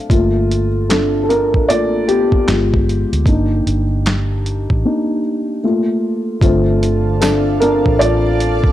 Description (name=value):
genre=lo-fi hip hop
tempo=76 BPM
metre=4/4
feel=swing 64% on 16ths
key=G minor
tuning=A4 = 440 Hz
part: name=dark upright piano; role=accompaniment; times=0.0-8.7 s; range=D3 to D5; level=-15 LUFS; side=left 1 dB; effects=cassette tape
part: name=vintage muted fingered electric bass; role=bass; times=0.1-8.7 s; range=G1 to D2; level=-18 LUFS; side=equal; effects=none
part: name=dusty soul sampler-style drum kit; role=drums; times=0.1-8.7 s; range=handclaps, hi-hat, kick drum, snare drum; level=-17 LUFS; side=equal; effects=overdrive
part: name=granular cloud pad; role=sustained chords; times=6.8-8.7 s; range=D5 to A5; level=-25 LUFS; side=right 3 dB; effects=built-in reverb
part: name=tambourine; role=percussion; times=7.2-7.4 s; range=none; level=-31 LUFS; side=right 8 dB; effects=none
room=digital ambience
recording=dry, gritty hardware recording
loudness=-13 LUFS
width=side -13 dB against mid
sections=0.0-6.4 A section; 6.4-8.7 A section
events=upright piano solo 0.0-6.4, 6.4-8.7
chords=0.1 Gm9; 2.5 G7b9; 3.3 G5; 5.6 Fadd11/A; 6.4 Bbmaj7/G